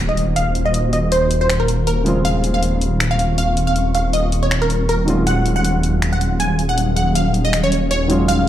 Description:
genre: future bass.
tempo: 159 BPM.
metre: 4/4.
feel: swing 54% on 16ths, half-time.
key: Eb dorian.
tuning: A4 = 440 Hz.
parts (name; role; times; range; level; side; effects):
felt-muted upright piano; accompaniment; 0.0-8.5 s; Db3 to Gb4; -24 LUFS; right 1 dB; none.
ethereal airy pad; sustained chords; 0.1-8.5 s; Gb3 to Db6; -26 LUFS; equal; ensemble chorus, built-in reverb.
wide detuned saw bass; bass; 0.0-8.5 s; Eb1; -18 LUFS; equal; chorus.
impact; sound effects; 0.0-0.7 s; none; -31 LUFS; equal; none.
wide unison pluck; melody; 0.1-8.5 s; Bb4 to Ab5; -20 LUFS; equal; tape echo.
big-room dance drum kit; drums; 0.2-8.4 s; finger snaps, hi-hat; -24 LUFS; left 2 dB; small room ambience.
room: light reverb.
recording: dark, warm production.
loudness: -15 LUFS.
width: side -11 dB against mid.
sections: 0.0-8.5 A section.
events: impact 0.0-0.7; filter sweep on ambient pad 0.0-8.5.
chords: 0.0 Ab9/Eb; 2.1 Dbmaj7/Eb; 5.1 Ebm11.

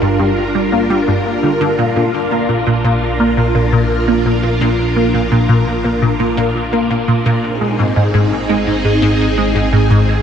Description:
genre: ambient, sequencer-driven space music.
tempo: 85 BPM.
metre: 4/4.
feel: straight.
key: unclear.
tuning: A4 = 440 Hz.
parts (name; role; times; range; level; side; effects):
phased string machine; sustained chords; 0.0-10.2 s; G3 to Bb4; -17 LUFS; equal; ensemble chorus, phaser.
resonant blip pluck; riff; 0.0-10.0 s; G2 to Bb3; -14 LUFS; equal; phaser, wide subtle chorus, ping-pong delay.
analog drone; bass; 0.0-10.2 s; G1 to Bb1; -22 LUFS; equal; chorus.
room: wet huge ambient reverb, RT60 7.9 s.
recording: dark, warm production.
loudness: -12 LUFS.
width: side -8 dB against mid.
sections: 0.0-10.2 A section.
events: none.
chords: 0.0 Gm7; 1.8 Bb; 7.4 Ab.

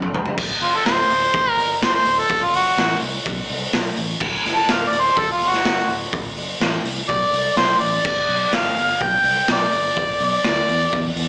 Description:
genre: blues rock power trio and southern rock.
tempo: 125 BPM.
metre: 4/4.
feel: straight.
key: D mixolydian.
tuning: A4 = 440 Hz.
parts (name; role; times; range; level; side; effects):
fretless electric bass; bass; 0.0-11.3 s; D1 to E2; -29 LUFS; equal; none.
raw garage drum kit; drums; 0.0-11.3 s; crash cymbal, hi-hat, kick drum, snare drum, toms; -21 LUFS; equal; none.
warm harmonica; melody; 0.6-11.2 s; F4 to A5; -18 LUFS; equal; overdrive.
room: light reverb.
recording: live gig heard through the venue's PA, club reverb, small speaker sound.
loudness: -16 LUFS.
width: side -26 dB against mid.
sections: 0.4-11.3 A section.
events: drum fill 0.0-0.4; harmonica solo 0.4-11.3.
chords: 0.4 D; 8.0 G.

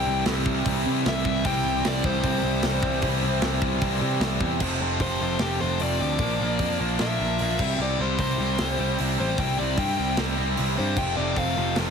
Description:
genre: punk rock.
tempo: 151 BPM.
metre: 4/4.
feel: straight.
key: unclear.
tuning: A4 = 442 Hz.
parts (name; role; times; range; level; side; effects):
overdriven electric guitar; melody; 0.0-11.8 s; G4 to G5; -29 LUFS; left 3 dB; none.
distorted electric guitar; riff; 0.0-11.9 s; F2 to C4; -28 LUFS; right 18 dB; overdrive.
tight distorted guitar; riff; 0.0-11.9 s; F2 to E4; -28 LUFS; left 17 dB; distortion.
picked electric bass; bass; 0.0-11.9 s; F1 to C3; -28 LUFS; equal; none.
tight metal drum kit; drums; 0.3-11.9 s; crash cymbal, hi-hat, kick drum, snare drum; -30 LUFS; right 1 dB; none.
room: little or no reverb.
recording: heavily compressed radio sound.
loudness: -22 LUFS.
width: side -6 dB against mid.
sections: 0.0-4.6 A section; 4.6-11.9 B section.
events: half time 4.6-11.9; overdriven electric guitar solo 4.6-11.9.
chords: 0.0 C; 4.6 F; 6.2 Bb; 7.6 C; 11.0 F.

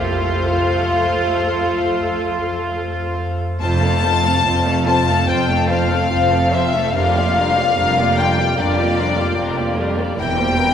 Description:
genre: classical, slow romantic movement for string orchestra.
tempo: 61-77 BPM.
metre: 4/4.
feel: rubato.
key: F major.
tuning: A4 = 440 Hz.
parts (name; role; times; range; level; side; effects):
warm symphonic violin section; melody; 0.0-10.7 s; D5 to A5; -20 LUFS; left 4 dB; none.
dark symphonic violin section; second line; 0.0-10.7 s; E4 to F5; -25 LUFS; left 1 dB; none.
dark symphonic viola section; accompaniment; 0.0-10.7 s; E3 to A4; -23 LUFS; equal; none.
dark studio double bass section; bass; 0.0-10.7 s; E1 to F2; -23 LUFS; right 2 dB; none.
warm symphonic cello section; bass; 0.0-10.7 s; E2 to F4; -22 LUFS; right 2 dB; none.
room: wet cathedral reverb, RT60 6.6 s.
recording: recorded in a church or concert hall.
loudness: -15 LUFS.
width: side -8 dB against mid.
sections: 0.0-3.6 A section; 3.6-10.7 B section.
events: none.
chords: 0.0 F; 7.0 Gm7/F; 10.2 C7/E.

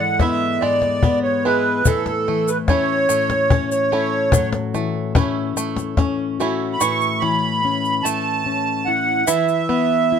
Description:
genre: acoustic folk duo or small band.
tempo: 48 BPM (dotted quarters).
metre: 6/8.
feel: straight.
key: A major.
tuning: A4 = 440 Hz.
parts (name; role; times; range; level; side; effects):
accordion; melody; 0.0-10.2 s; A4 to C#6; -19 LUFS; right 3 dB; light tremolo tuning.
fingerpicked plugged-in steel-string acoustic guitar; accompaniment; 0.0-10.2 s; G#2 to A4; -23 LUFS; left 7 dB; none.
bluegrass banjo; arpeggios; 0.0-10.2 s; D3 to E4; -26 LUFS; right 7 dB; none.
cajon; percussion; 0.2-6.3 s; none; -18 LUFS; left 3 dB; none.
egg shaker; percussion; 1.9-9.6 s; none; -27 LUFS; left 8 dB; none.
room: light reverb.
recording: close, detailed microphones.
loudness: -17 LUFS.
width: side -7 dB against mid.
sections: 0.0-6.8 A section; 6.8-10.2 B section.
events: accordion solo 0.0-6.8.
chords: 0.0 E7/G#; 1.9 A; 4.3 A6; 6.8 A; 9.3 E5.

